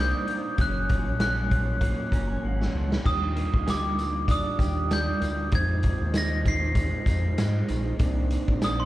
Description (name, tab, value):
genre	indie pop, bedroom pop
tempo	97 BPM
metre	4/4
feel	swing 55% on 16ths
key	unclear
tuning	A4 = 440 Hz
part	glockenspiel with hard plastic mallets	melody	0.0-8.9 s	C6 to C7	-30 LUFS	equal	analog chorus, slapback echo, plate reverb
part	electric guitar through a small old amp	accompaniment	0.0-8.9 s	F2 to G4	-36 LUFS	left 1 dB	analog chorus, vibrato effect, plate reverb, slapback echo
part	mellow tonewheel organ	accompaniment	0.0-8.9 s	Gb3 to Bb5	-33 LUFS	right 3 dB	fast rotary speaker, plate reverb, slapback echo
part	round analog bass	bass	0.0-8.9 s	Gb1 to Ab2	-27 LUFS	equal	none
part	raw garage drum kit	drums	0.3-8.8 s	crash cymbal, hi-hat, kick drum, snare drum	-27 LUFS	equal	none
part	tambourine	percussion	3.1-8.8 s	none	-46 LUFS	left 2 dB	none
room	little or no reverb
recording	live gig heard through the venue's PA, club reverb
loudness	-23 LUFS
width	side -16 dB against mid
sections	0.0-8.9 A section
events	tonewheel organ fill 1.8-3.1; drum fill 2.4-3.1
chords	0.0 Cm9; 0.6 Gbmaj7; 3.1 Ebmaj9; 5.5 Fm7; 8.0 Cm9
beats	| 0.58 1.20 1.82 2.43 | 3.05 3.67 4.29 4.91 | 5.53 6.14 6.76 7.38 | 8.00 8.62